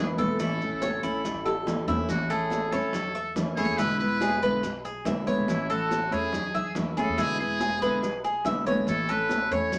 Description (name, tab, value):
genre	latin, Cuban son and guajira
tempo	141 BPM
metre	4/4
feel	straight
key	A major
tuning	A4 = 440 Hz
part	trumpet with metal mute	melody	0.0-9.8 s	E4 to C#5	-33 LUFS	equal	none
part	picked steel-string acoustic guitar	accompaniment	0.0-9.8 s	B2 to E4	-32 LUFS	equal	none
part	Cuban tres	arpeggios	0.0-9.8 s	A3 to E5	-32 LUFS	equal	none
part	upright bass	bass	0.0-9.8 s	E1 to E2	-43 LUFS	equal	none
part	congas	percussion	0.2-9.8 s	none	-38 LUFS	equal	none
part	maracas	percussion	0.2-9.8 s	none	-50 LUFS	equal	none
part	bongos	percussion	0.4-9.8 s	none	-38 LUFS	equal	none
room	wet studio reverb, RT60 0.6 s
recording	none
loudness	-27 LUFS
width	mono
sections	0.0-2.1 A section; 2.1-9.8 B section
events	drum fill 1.5-2.1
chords	0.4 A; 3.8 E7; 5.5 A; 7.2 E7; 8.9 A